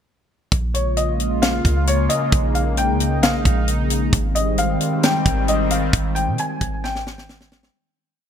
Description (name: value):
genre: hip hop, atmospheric cloud-rap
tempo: 133 BPM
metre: 4/4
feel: half-time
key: Bb dorian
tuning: A4 = 440 Hz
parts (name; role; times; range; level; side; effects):
- sweeping resonant pad; sustained chords; 0.5-7.7 s; Db3 to F4; -22 LUFS; left 1 dB; chorus, sidechain pumping
- clean 808-style bass; bass; 0.5-7.7 s; Ab1 to C3; -22 LUFS; right 1 dB; none
- tight funk drum kit; drums; 0.5-7.7 s; hi-hat, kick drum, snare drum; -21 LUFS; equal; none
- felt-muted upright piano; melody; 0.7-7.7 s; Db5 to Ab5; -24 LUFS; left 2 dB; ping-pong delay
room: light reverb, studio ambience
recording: bright 1980s-style digital production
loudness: -17 LUFS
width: side -8 dB against mid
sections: 0.5-7.7 verse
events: fade-out 5.9-7.7; drum fill 6.8-7.7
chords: 0.5 Bbm7; 4.1 Abmaj7